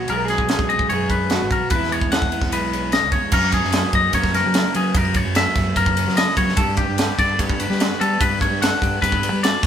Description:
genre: math rock and midwest emo.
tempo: 148 BPM.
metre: 4/4.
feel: straight.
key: unclear.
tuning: A4 = 440 Hz.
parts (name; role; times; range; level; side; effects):
electric guitar through a small old amp; melody; 0.0-2.9 s; E4 to A#4; -26 LUFS; right 1 dB; none.
twelve-string electric guitar; accompaniment; 0.0-9.7 s; E2 to F#4; -28 LUFS; right 7 dB; none.
twangy electric guitar; arpeggios; 0.0-9.7 s; G4 to F#5; -21 LUFS; left 4 dB; none.
growling fingered electric bass; bass; 0.1-9.7 s; G#1 to G3; -24 LUFS; equal; overdrive.
crisp fusion drum kit; drums; 0.1-9.7 s; crash cymbal, kick drum, ride cymbal, snare drum; -21 LUFS; right 1 dB; none.
room: moderate studio reverb, RT60 0.9 s.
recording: band playing live in one room.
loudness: -17 LUFS.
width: side -9 dB against mid.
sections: 0.0-3.3 A section; 3.3-9.7 B section.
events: none.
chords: 0.0 B69; 1.7 E6; 3.3 F#7; 6.6 Gmaj7.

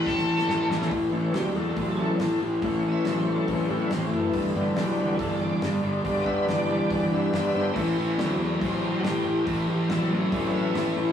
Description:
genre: classic rock.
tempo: 140 BPM.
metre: 4/4.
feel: straight.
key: A major.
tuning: A4 = 443 Hz.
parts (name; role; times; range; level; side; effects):
octave-fuzz lead guitar; melody; 0.0-0.7 s; A4; -27 LUFS; left 2 dB; wah, distortion.
bright tonewheel organ; sustained chords; 0.0-11.1 s; E3 to G5; -28 LUFS; left 2 dB; slow rotary speaker, overdrive, chorus vibrato.
overdriven semi-hollow guitar; riff; 0.0-11.1 s; G2 to A4; -27 LUFS; equal; none.
tight distorted guitar; riff; 0.0-0.9, 7.7-11.1 s; A2 to A3; -32 LUFS; equal; distortion.
fuzz picked electric bass; bass; 0.1-11.1 s; F#1 to A2; -31 LUFS; left 1 dB; overdrive.
damped 70s drum kit; drums; 0.1-10.8 s; hi-hat, kick drum, snare drum; -34 LUFS; equal; none.
room: wet studio reverb, RT60 0.7 s.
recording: rough rehearsal-room recording, warm saturation, small room ambience.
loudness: -23 LUFS.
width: side -9 dB against mid.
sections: 0.9-11.1 A section.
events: drum fill 0.1-0.9; tonewheel organ solo 0.9-11.1.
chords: 0.0 A; 4.3 G; 7.8 A.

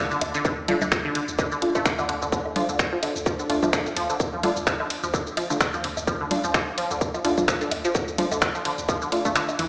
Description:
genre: minimal techno.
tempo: 128 BPM.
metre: 4/4.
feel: swing 56% on 16ths.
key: D minor.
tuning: A4 = 440 Hz.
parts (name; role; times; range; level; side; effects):
resonant blip pluck; riff; 0.1-9.6 s; D3 to A3; -27 LUFS; equal; phaser, analog chorus, sidechain pumping, digital delay.
punchy sub bass; bass; 0.1-9.7 s; A1 to D2; -38 LUFS; equal; sidechain pumping.
garage drum kit; drums; 0.1-9.7 s; finger snaps, hi-hat, ride cymbal, shaker; -27 LUFS; equal; none.
woodblock and congas; percussion; 0.2-9.6 s; none; -33 LUFS; equal; dub echo.
electronic kick drum; drums; 0.4-9.3 s; none; -26 LUFS; equal; none.
filtered dub chord stab; stabs; 0.7-9.3 s; A3 to F4; -28 LUFS; equal; lush chorus, dub echo.
room: moderate lush hall reverb, RT60 2.0 s.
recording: played on a big sound system in a bare room, large studio reverb, small speaker sound.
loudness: -22 LUFS.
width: side -27 dB against mid.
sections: 0.0-9.7 A section.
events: kick drops out 9.4-9.7.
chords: 0.0 Dm.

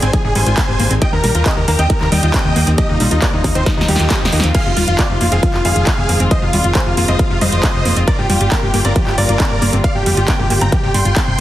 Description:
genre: uplifting trance.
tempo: 136 BPM.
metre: 4/4.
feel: straight.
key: F dorian.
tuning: A4 = 438 Hz.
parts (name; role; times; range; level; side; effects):
big supersaw lead; melody; 0.0-11.4 s; Eb4 to C6; -21 LUFS; right 1 dB; vintage 12-bit sampler grit, sidechain pumping, ping-pong delay.
bright grand piano; second line; 0.0-11.4 s; Eb4 to C6; -24 LUFS; equal; sidechain pumping.
warm studio string section; sustained chords; 0.0-11.4 s; D3 to G4; -23 LUFS; equal; sidechain pumping.
analog pluck; arpeggios; 0.0-11.4 s; C3 to F4; -23 LUFS; left 2 dB; chorus, sidechain pumping, ping-pong delay.
solid FM bass; bass; 0.0-11.3 s; Eb1 to Eb2; -16 LUFS; equal; sidechain pumping.
big-room dance drum kit; drums; 0.0-11.3 s; crash cymbal, handclaps, hi-hat, snare drum; -21 LUFS; right 1 dB; sidechain pumping on hats, small room ambience, sidechain pumping on cymbals.
electronic kick drum; drums; 0.1-11.3 s; none; -17 LUFS; equal; small room ambience.
room: light reverb.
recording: heavily compressed radio sound, multiband compression.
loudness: -12 LUFS.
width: side -14 dB against mid.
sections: 0.0-11.4 A section.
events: drum fill 3.7-4.5.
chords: 0.0 Abmaj7; 1.0 Eb; 4.5 Fm7; 8.1 Gm7.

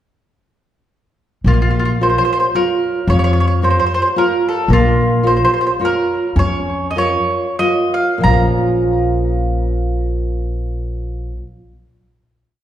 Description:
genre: italian folk, Italian serenade.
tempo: 88-112 BPM.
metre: 3/4.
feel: swing 54% on 8ths.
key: Bb minor.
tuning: A4 = 444 Hz.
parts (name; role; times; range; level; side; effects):
upright bass; bass; 1.4-11.4 s; Bb1 to F2; -17 LUFS; equal; none.
mandolin; melody; 1.5-11.4 s; F4 to Bb5; -18 LUFS; right 1 dB; tape echo.
nylon-string guitar; accompaniment; 1.5-11.5 s; Bb2 to F5; -18 LUFS; equal; none.
room: wet recital hall reverb, RT60 1.3 s.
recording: heard from further back in the room.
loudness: -13 LUFS.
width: side -11 dB against mid.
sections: 1.5-8.2 A section; 8.2-12.3 final chord.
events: slowing down 4.7-8.2.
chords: 1.5 Bbm.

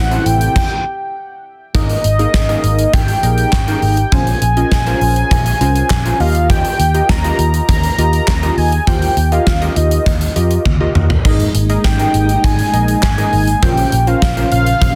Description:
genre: synth-pop.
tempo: 101 BPM.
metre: 4/4.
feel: straight.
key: unclear.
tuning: A4 = 440 Hz.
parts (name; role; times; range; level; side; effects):
fat analog lead; melody; 0.0-15.0 s; Eb5 to Bb5; -20 LUFS; equal; tape echo.
ensemble organ-string; sustained chords; 0.0-0.5, 11.2-15.0 s; Bb2 to E4; -24 LUFS; equal; phaser, ensemble chorus.
vintage muted picked electric bass; bass; 0.0-15.0 s; Ab1 to F2; -18 LUFS; equal; none.
funky polysynth comp; accompaniment; 0.1-14.9 s; Bb3 to Eb5; -23 LUFS; equal; chorus.
gated 80s drum kit; drums; 0.1-15.0 s; crash cymbal, handclaps, hi-hat, kick drum, snare drum, splash cymbal, toms; -19 LUFS; equal; none.
room: light reverb, studio reverb.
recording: dense, heavily limited modern master.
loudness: -14 LUFS.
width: mono.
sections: 0.0-1.7 A section; 1.7-15.0 A section.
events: stop 0.6-1.7; drum fill 10.7-11.2.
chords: 0.0 Am; 0.6 N.C.; 1.7 Absus2; 4.1 Bbmadd9; 6.2 Ebadd9; 11.2 Absus2; 13.6 Bbmadd9.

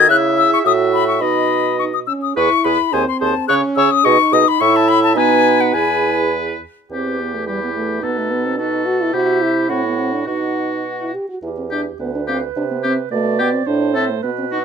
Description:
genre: quick classical-period movement for wind quintet.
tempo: 106 BPM.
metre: 2/4.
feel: rubato.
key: E major, E minor from 6.9 s.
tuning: A4 = 441 Hz.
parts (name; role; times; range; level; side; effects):
concert flute; melody; 0.0-14.6 s; B4 to F#6; -17 LUFS; left 9 dB; none.
warm oboe; second line; 0.0-14.6 s; F#4 to E5; -21 LUFS; left 2 dB; none.
mellow French horn; accompaniment; 0.0-14.6 s; G3 to G#4; -21 LUFS; right 2 dB; none.
mellow clarinet; accompaniment; 0.0-14.6 s; D#4 to D5; -23 LUFS; right 14 dB; none.
dark bassoon; bass; 0.0-14.6 s; D2 to D#3; -22 LUFS; right 4 dB; none.
room: light reverb.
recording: close, detailed microphones.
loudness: -14 LUFS.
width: side -6 dB against mid.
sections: 0.0-6.9 A section; 6.9-14.6 A section.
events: none.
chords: 0.1 C#m; 0.6 F#m7/A; 1.2 B; 2.4 E; 2.9 G#/D#; 3.5 C#5; 4.1 G#m/B; 4.6 A5; 5.2 B; 5.7 E; 6.9 Em; 8.0 B7; 9.1 C; 9.7 Am69; 10.3 B; 11.4 Em; 12.0 G7/D (rootless); 12.6 C; 13.1 G/B; 13.7 Am.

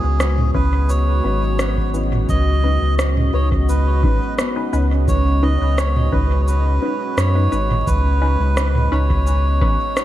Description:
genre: ambient dub.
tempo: 86 BPM.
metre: 4/4.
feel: straight.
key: unclear.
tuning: A4 = 440 Hz.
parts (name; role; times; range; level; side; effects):
melodica; melody; 0.0-10.0 s; G#4 to D#5; -24 LUFS; right 2 dB; dub echo.
deep dark ambient pad; sustained chords; 0.0-10.0 s; G#3 to D#5; -26 LUFS; equal; chorus, built-in reverb.
filtered dub chord stab; stabs; 0.0-9.8 s; C#4 to B4; -28 LUFS; left 3 dB; phaser, dub echo.
warm sub bass; bass; 0.0-9.8 s; G#1 to F#2; -17 LUFS; equal; none.
organic electronic drum kit; drums; 0.2-10.0 s; cabasa, rim click, toms; -25 LUFS; equal; dub echo.
electronic kick drum; drums; 0.5-9.8 s; none; -22 LUFS; equal; none.
handpan; arpeggios; 4.4-8.0 s; B3 to C#5; -30 LUFS; right 2 dB; dub echo.
room: light reverb.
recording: vinyl crackle.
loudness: -15 LUFS.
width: side -13 dB against mid.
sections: 0.0-10.0 A section.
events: none.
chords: 0.0 C#m7; 2.3 Badd9.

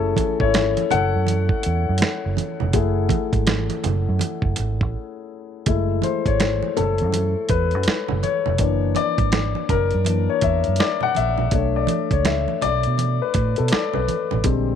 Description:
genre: R&B, neo-soul.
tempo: 82 BPM.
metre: 4/4.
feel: swing 63% on 16ths.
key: F# minor.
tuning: A4 = 444 Hz.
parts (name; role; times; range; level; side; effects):
dark baby grand piano; accompaniment; 0.0-14.8 s; D3 to F#5; -22 LUFS; left 8 dB; none.
vintage muted fingered electric bass; bass; 0.0-14.8 s; E#1 to B2; -22 LUFS; right 2 dB; none.
dusty soul sampler-style drum kit; drums; 0.2-14.7 s; hi-hat, kick drum, snare drum; -23 LUFS; right 2 dB; none.
congas; percussion; 0.2-14.7 s; none; -29 LUFS; right 16 dB; none.
room: light reverb, studio ambience.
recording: 1960s-style stereo with parts hard left and right.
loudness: -18 LUFS.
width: side -8 dB against mid.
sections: 0.0-5.7 A section; 5.7-14.8 B section.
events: grand piano solo 0.0-5.7, 5.7-14.8; break 4.9-5.7.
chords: 0.0 F#m9; 8.6 F#7b13; 11.5 Bm9.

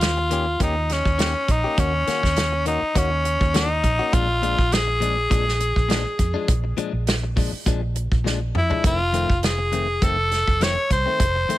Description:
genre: straight-eighth soul blues.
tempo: 102 BPM.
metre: 4/4.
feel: swing 54% on 16ths.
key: unclear.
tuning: A4 = 440 Hz.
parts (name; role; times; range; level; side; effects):
raspy tenor saxophone; melody; 0.0-11.6 s; Db4 to Db5; -22 LUFS; left 1 dB; none.
direct-recorded clean electric guitar; stabs; 0.0-11.6 s; F2 to G4; -29 LUFS; left 6 dB; none.
vintage muted fingered electric bass; bass; 0.0-11.5 s; F1 to F2; -25 LUFS; right 1 dB; none.
warm soul drum kit; drums; 0.0-11.6 s; hi-hat, kick drum, snare drum, toms; -22 LUFS; right 1 dB; none.
room: studio reverb.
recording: none.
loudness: -19 LUFS.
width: side -15 dB against mid.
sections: 0.0-11.6 A section.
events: drum fill 8.3-8.8.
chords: 0.0 Eb7; 1.8 Ebm7; 4.1 Bb7; 8.8 F7.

